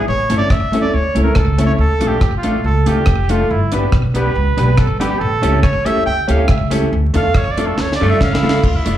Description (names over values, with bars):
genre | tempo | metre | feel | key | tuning
ska | 140 BPM | 4/4 | straight | D harmonic minor | A4 = 440 Hz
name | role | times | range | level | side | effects
warm trumpet | melody | 0.0-8.6 s | E4 to G5 | -20 LUFS | right 2 dB | slapback echo
clear upright piano | stabs | 0.0-8.6 s | A3 to B4 | -22 LUFS | left 2 dB | slapback echo
upright bass | bass | 0.1-9.0 s | F1 to G2 | -17 LUFS | equal | tube saturation
mellow electric guitar | accompaniment | 0.3-9.0 s | A3 to G4 | -22 LUFS | equal | tremolo, slapback echo
deep reggae drum kit | drums | 0.3-9.0 s | crash cymbal, hi-hat, kick drum, rim click, snare drum | -17 LUFS | equal | slapback echo
growling tenor saxophone | melody | 8.0-9.0 s | A3 to F4 | -22 LUFS | left 1 dB | slapback echo
room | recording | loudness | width
light reverb | live gig heard through the venue's PA, club reverb, vinyl crackle | -13 LUFS | side -12 dB against mid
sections
0.0-8.6 A section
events
trumpet solo 0.0-8.6; drum fill 7.8-8.6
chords
0.1 A; 1.8 Dm; 3.5 G; 5.2 A7; 6.9 Dm